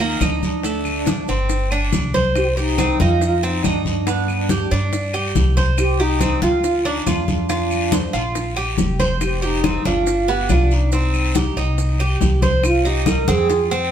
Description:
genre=latin, Cuban son and guajira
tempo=140 BPM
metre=4/4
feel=straight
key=C minor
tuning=A4 = 436 Hz
part: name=mellow wooden-headed alto flute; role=melody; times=0.0-13.7 s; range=D4 to Bb4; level=-22 LUFS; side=right 2 dB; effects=none
part: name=Cuban tres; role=arpeggios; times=0.0-13.9 s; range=A3 to C5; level=-23 LUFS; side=right 2 dB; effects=none
part: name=upright bass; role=bass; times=0.0-13.9 s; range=F1 to G2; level=-21 LUFS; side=equal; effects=none
part: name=congas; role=percussion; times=0.0-13.9 s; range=none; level=-24 LUFS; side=left 1 dB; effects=none
part: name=maracas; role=percussion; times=0.0-13.9 s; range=none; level=-35 LUFS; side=right 5 dB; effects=none
part: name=bongos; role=percussion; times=0.2-13.7 s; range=none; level=-26 LUFS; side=left 6 dB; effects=none
part: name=claves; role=percussion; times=0.2-13.3 s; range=none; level=-30 LUFS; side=left 3 dB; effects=none
part: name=guiro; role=percussion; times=0.2-13.9 s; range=none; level=-32 LUFS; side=left 4 dB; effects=none
room=moderate stone room reverb, RT60 1.1 s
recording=band playing live in one room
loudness=-16 LUFS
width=side -9 dB against mid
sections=0.0-12.6 A section; 12.6-13.9 B section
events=none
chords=0.0 Eb5; 0.6 D5; 1.5 Gsus4; 2.4 Cm; 3.2 F5; 4.1 G; 5.8 Cm; 6.6 Dm; 7.5 F5; 8.4 Bb5; 9.2 Fsus2; 10.1 G; 10.9 Cm

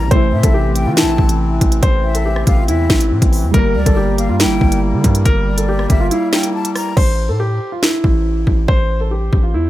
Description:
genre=hip hop, drill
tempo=140 BPM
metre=4/4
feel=half-time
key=A phrygian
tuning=A4 = 439 Hz
part: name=dark concert grand piano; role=melody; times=0.0-9.7 s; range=E4 to C5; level=-20 LUFS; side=right 1 dB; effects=low-pass filter
part: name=breathy concert flute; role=second line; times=0.0-7.0 s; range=D5 to Bb5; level=-26 LUFS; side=left 5 dB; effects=digital delay
part: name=warbly lo-fi synth keys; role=accompaniment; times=0.0-7.0 s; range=C3 to Bb4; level=-22 LUFS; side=right 2 dB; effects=chorus, low-pass filter
part: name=accordion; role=sustained chords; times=0.0-6.9 s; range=E3 to C4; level=-26 LUFS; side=left 3 dB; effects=light tremolo tuning
part: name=distorted 808-style bass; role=bass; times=0.0-9.7 s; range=G1 to E3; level=-17 LUFS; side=equal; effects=distortion
part: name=drill drum kit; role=drums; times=0.1-9.4 s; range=crash cymbal, hi-hat, kick drum, rim click, snare drum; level=-15 LUFS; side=equal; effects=none
room=little or no reverb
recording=none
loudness=-12 LUFS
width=side -15 dB against mid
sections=0.0-7.0 A section; 7.0-9.7 B section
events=break 6.1-7.0; hi-hats muted 7.0-9.7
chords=0.1 Am; 3.5 Gm; 7.0 A5

